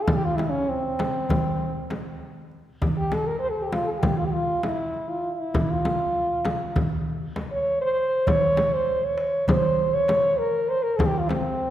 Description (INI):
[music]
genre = Turkish makam ensemble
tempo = 198 BPM (eighths)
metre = 9/8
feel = straight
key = C makam hicaz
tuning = A4 = 440 Hz
[part]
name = mellow French horn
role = melody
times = 0.0-11.7 s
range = C4 to Db5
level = -24 LUFS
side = right 1 dB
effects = slapback echo
[part]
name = darbuka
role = percussion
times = 0.1-11.4 s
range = none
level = -29 LUFS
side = right 2 dB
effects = none
[part]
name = frame drum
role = percussion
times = 0.1-11.4 s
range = none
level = -27 LUFS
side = left 1 dB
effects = none
[sound]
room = wet concert hall reverb, RT60 2.0 s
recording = heard from further back in the room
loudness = -22 LUFS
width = side -12 dB against mid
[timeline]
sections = 0.0-11.7 A section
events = none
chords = none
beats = | 0.08 0.38 0.69 0.99 1.29 1.60 1.90 2.20 2.51 | 2.81 3.12 3.42 3.72 4.03 4.33 4.63 4.94 5.24 | 5.54 5.84 6.15 6.45 6.75 7.06 7.36 7.66 7.97 | 8.27 8.57 8.88 9.18 9.48 9.78 10.09 10.39 10.69 | 11.00 11.30 11.60